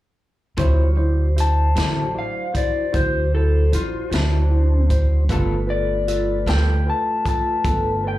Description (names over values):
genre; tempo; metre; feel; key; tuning
slow blues; 51 BPM (dotted quarters); 12/8; straight; D mixolydian; A4 = 440 Hz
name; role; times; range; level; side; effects
barky tine electric piano; accompaniment; 0.6-8.2 s; E4 to D5; -28 LUFS; right 3 dB; phaser, slapback echo
electric guitar at the edge of break-up; accompaniment; 0.6-6.7 s; D3 to A4; -28 LUFS; left 4 dB; tremolo, slapback echo
mellow tonewheel organ; sustained chords; 0.6-8.2 s; F#3 to C#5; -30 LUFS; equal; slow rotary speaker
upright bass; bass; 0.6-8.2 s; G1 to D2; -19 LUFS; equal; none
vintage drum kit; drums; 0.6-7.8 s; hi-hat, kick drum, snare drum; -25 LUFS; equal; none
electric guitar through a small old amp; melody; 1.4-8.2 s; D4 to A5; -23 LUFS; left 4 dB; slapback echo
room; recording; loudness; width
little or no reverb; live gig heard through the venue's PA, club ambience; -17 LUFS; side -15 dB against mid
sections
0.6-8.2 A section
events
none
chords
0.6 D9; 5.3 G9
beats
| 0.59 1.77 2.94 4.12 | 5.30 6.47 7.65